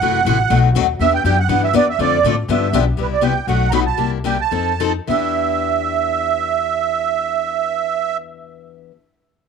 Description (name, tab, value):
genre	acoustic string swing (jazz manouche)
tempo	206-243 BPM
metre	4/4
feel	swing 55% on 8ths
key	E minor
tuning	A4 = 440 Hz
part	musette accordion	melody	0.0-8.2 s	B4 to B5	-18 LUFS	right 9 dB	none
part	picked steel-string acoustic guitar	accompaniment	0.0-8.9 s	B2 to A4	-20 LUFS	left 12 dB	none
part	upright bass	bass	0.0-8.9 s	F#1 to A2	-21 LUFS	left 1 dB	none
room	light reverb, studio ambience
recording	1960s-style stereo with parts hard left and right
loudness	-15 LUFS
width	side -6 dB against mid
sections	0.0-3.0 A section; 3.0-5.1 B section; 5.1-7.4 C section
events	slowing down 3.0-5.1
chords	0.0 F#m7b5; 0.5 B7; 1.0 Em7; 2.0 Dm7; 2.5 G7; 3.0 Cmaj7; 3.5 B7; 4.0 C7; 4.5 F7; 5.1 Em7